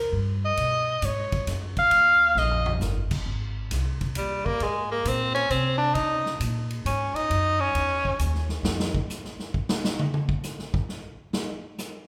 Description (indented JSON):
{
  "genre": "jazz, small-group swing and bop",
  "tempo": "134 BPM",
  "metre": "3/4",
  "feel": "swing 67% on 8ths",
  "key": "Ab major",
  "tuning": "A4 = 440 Hz",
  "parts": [
    { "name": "mellow alto saxophone", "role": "melody", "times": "0.0-2.8 s", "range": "Bb4 to F5", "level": "-23 LUFS", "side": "equal", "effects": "none" },
    { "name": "upright bass", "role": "bass", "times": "0.0-8.9 s", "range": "G1 to Db3", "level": "-31 LUFS", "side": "equal", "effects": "none" },
    { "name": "swinging big-band drum kit", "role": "drums", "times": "0.1-11.9 s", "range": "crash cymbal, hi-hat, kick drum, ride cymbal, snare drum, toms", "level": "-33 LUFS", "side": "equal", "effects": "none" },
    { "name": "edgy tenor saxophone", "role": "second line", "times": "4.2-8.2 s", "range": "G3 to Eb4", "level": "-27 LUFS", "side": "equal", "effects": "none" }
  ],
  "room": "wet recital hall reverb, RT60 1.6 s",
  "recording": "recorded in a church or concert hall",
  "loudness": "-25 LUFS",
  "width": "mono",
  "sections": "0.0-3.3 A section; 3.3-12.1 A section",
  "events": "alto saxophone solo 0.0-3.3; drum fill 2.4-2.8; tenor saxophone solo 3.3-12.1; drum solo 8.6-12.1",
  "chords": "0.0 C7 (rootless); 0.6 Badd9; 1.9 Ebadd9; 3.3 Ab; 6.0 Dbsus2; 7.3 Gb5; 8.6 N.C.",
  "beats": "0.13 | 0.58 1.02 1.47 | 1.92 2.37 2.81 | 3.26 3.71 4.16 | 4.61 5.05 5.50 | 5.95 6.40 6.85 | 7.30 7.75 8.19 | 8.64 9.09 9.54 | 9.99 10.44 10.89 | 11.34 11.79"
}